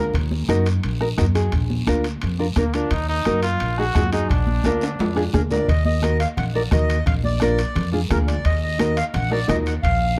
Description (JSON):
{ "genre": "latin, cumbia", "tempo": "173 BPM", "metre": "4/4", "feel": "straight", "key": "Eb harmonic minor", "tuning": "A4 = 440 Hz", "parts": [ { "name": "bright trumpet", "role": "second line", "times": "0.0-0.1, 2.6-5.3 s", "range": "Bb3 to Gb4", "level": "-29 LUFS", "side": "equal", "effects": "none" }, { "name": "nylon-string guitar", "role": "accompaniment", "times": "0.0-9.7 s", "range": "D4 to Bb4", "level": "-26 LUFS", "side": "equal", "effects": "none" }, { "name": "upright bass", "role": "bass", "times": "0.0-10.2 s", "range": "Bb1 to Gb2", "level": "-25 LUFS", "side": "equal", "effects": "none" }, { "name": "bombo", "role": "percussion", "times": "0.1-10.0 s", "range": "none", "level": "-26 LUFS", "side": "equal", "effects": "none" }, { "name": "guiro", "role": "percussion", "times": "0.1-10.2 s", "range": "none", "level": "-40 LUFS", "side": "equal", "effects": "none" }, { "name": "timbales", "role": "percussion", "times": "0.1-10.0 s", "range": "none", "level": "-33 LUFS", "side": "equal", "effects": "none" }, { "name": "congas", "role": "percussion", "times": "0.3-9.7 s", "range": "none", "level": "-30 LUFS", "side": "equal", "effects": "none" }, { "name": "accordion", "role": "melody", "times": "5.3-10.2 s", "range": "Bb4 to Gb5", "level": "-28 LUFS", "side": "equal", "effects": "slapback echo" } ], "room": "little or no reverb", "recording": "dark, warm production", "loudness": "-21 LUFS", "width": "mono", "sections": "0.0-5.7 A section; 5.7-10.2 B section", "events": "trumpet solo 0.0-5.7; drum fill 4.6-5.7", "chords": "0.1 Ebm; 1.5 Bb; 2.9 Ebm; 4.3 Bb; 5.7 Ebm; 7.1 Bb7; 8.5 Ebm" }